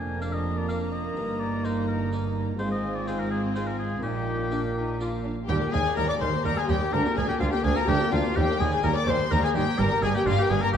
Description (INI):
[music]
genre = classical, baroque-style concerto movement with solo episodes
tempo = 125 BPM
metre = 3/4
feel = straight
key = Eb major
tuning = A4 = 436 Hz
[part]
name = warm chamber violin section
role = melody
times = 0.0-10.8 s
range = F5 to D6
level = -33 LUFS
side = left 5 dB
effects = none
[part]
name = warm oboe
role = melody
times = 0.0-10.8 s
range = F4 to Ab5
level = -32 LUFS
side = left 2 dB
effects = none
[part]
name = rich chamber violin section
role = second line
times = 0.0-10.8 s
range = D4 to D5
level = -31 LUFS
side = left 4 dB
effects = none
[part]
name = dark chamber viola section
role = accompaniment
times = 0.0-10.8 s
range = G3 to D4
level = -31 LUFS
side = equal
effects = none
[part]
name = harpsichord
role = accompaniment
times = 0.0-10.8 s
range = D2 to Eb5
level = -36 LUFS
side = equal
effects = none
[part]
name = rich chamber cello section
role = bass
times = 0.0-10.8 s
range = D2 to Bb2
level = -30 LUFS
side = right 2 dB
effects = none
[part]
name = rich chamber double bass section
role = bass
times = 0.0-10.8 s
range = F1 to Eb2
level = -30 LUFS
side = right 3 dB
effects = none
[sound]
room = moderate concert hall reverb, RT60 2.3 s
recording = dark, warm production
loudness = -23 LUFS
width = side -8 dB against mid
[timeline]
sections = 0.0-5.5 A section; 5.5-10.8 B section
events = none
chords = 0.0 Bb/F; 1.2 Eb/G; 2.6 Fm/Ab; 4.0 Eb/Bb; 5.0 Bb; 5.5 Eb; 6.9 Bb/D; 8.4 Eb; 9.8 Eb/G